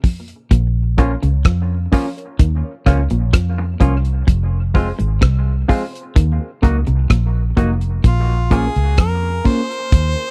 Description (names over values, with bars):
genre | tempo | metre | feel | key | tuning
dub reggae | 64 BPM | 4/4 | straight | Bb minor | A4 = 441 Hz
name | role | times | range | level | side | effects
electric guitar at the edge of break-up | riff | 0.0-8.3 s | F2 to F3 | -28 LUFS | equal | dub echo
damped 70s drum kit | drums | 0.0-10.2 s | hi-hat, kick drum, rim click | -16 LUFS | equal | none
vintage muted fingered electric bass | bass | 0.5-10.1 s | F1 to F2 | -19 LUFS | equal | none
clean electric guitar | accompaniment | 1.0-8.6 s | F3 to Gb4 | -26 LUFS | equal | dub echo
reed electric piano | stabs | 1.0-10.3 s | Bb3 to Db5 | -27 LUFS | equal | overdrive, spring reverb, dub echo
clear harmonica | melody | 8.1-10.3 s | F4 to C5 | -25 LUFS | equal | dub echo
room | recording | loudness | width
small room ambience | dry, close 1970s-style studio recording | -17 LUFS | mono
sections
0.0-10.3 A section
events
break 0.0-0.5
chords
0.0 N.C.; 0.5 Bbm; 4.3 Fm; 6.2 Ebm; 8.0 Bbm